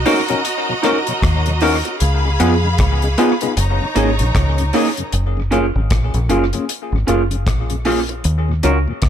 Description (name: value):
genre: lovers rock reggae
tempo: 77 BPM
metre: 4/4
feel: swing 60% on 16ths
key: F# major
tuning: A4 = 439 Hz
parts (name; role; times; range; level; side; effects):
- bright studio string section; second line; 0.0-5.1 s; D#4 to B5; -22 LUFS; right 1 dB; none
- deep dub fingered electric bass; bass; 0.0-9.1 s; F#1 to E#2; -17 LUFS; equal; none
- bell-like tine electric piano; accompaniment; 0.1-8.8 s; A#3 to A#4; -22 LUFS; left 5 dB; phaser, tape echo
- tonewheel organ; accompaniment; 0.1-8.9 s; D#2 to G#4; -27 LUFS; left 3 dB; overdrive, slow rotary speaker
- electric guitar through a small old amp; stabs; 0.1-8.8 s; A#3 to A#4; -20 LUFS; right 6 dB; none
- deep reggae drum kit; drums; 0.1-9.1 s; hi-hat, kick drum, rim click; -22 LUFS; left 1 dB; gated reverb, tape echo
room: small room ambience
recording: none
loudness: -14 LUFS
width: side -9 dB against mid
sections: 0.0-5.1 A section; 5.1-9.1 B section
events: none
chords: 0.0 Bmaj7; 2.0 C#7; 3.6 F#69; 5.1 F#maj7; 8.2 D#m7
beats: 0.45 1.23 | 2.01 2.79 3.57 4.35 | 5.13 5.91 6.69 7.46 | 8.24 9.03